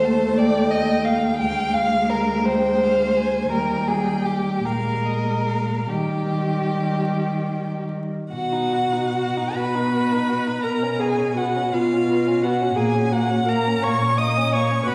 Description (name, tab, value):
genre	classical, slow romantic movement for string quartet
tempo	47-60 BPM (dotted quarters)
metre	6/8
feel	rubato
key	Eb major, B major from 8.3 s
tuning	A4 = 439 Hz
part	rich violin	melody	0.0-14.9 s	Eb5 to D#6	-29 LUFS	equal	none
part	warm violin	second line	0.0-14.9 s	A#3 to G5	-27 LUFS	equal	none
part	rich viola	accompaniment	0.0-14.9 s	G3 to D#5	-27 LUFS	equal	none
part	warm cello	bass	0.0-14.9 s	D2 to Eb3	-26 LUFS	equal	none
room	wet recital hall reverb, RT60 1.7 s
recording	heard from further back in the room, vinyl crackle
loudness	-21 LUFS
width	mono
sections	0.0-8.3 A section; 8.3-14.9 B section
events	none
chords	0.0 F13/Eb; 1.4 Dm7b5; 3.5 Eb; 4.7 Bb7sus4; 5.9 Eb; 8.3 B; 10.6 C#7/B; 12.8 F#69/A#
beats	0.38 | 1.40 2.47 | 3.52 4.66 | 5.90 7.10 | 8.32 9.56 | 10.63 11.73 | 12.77 13.83 | 14.87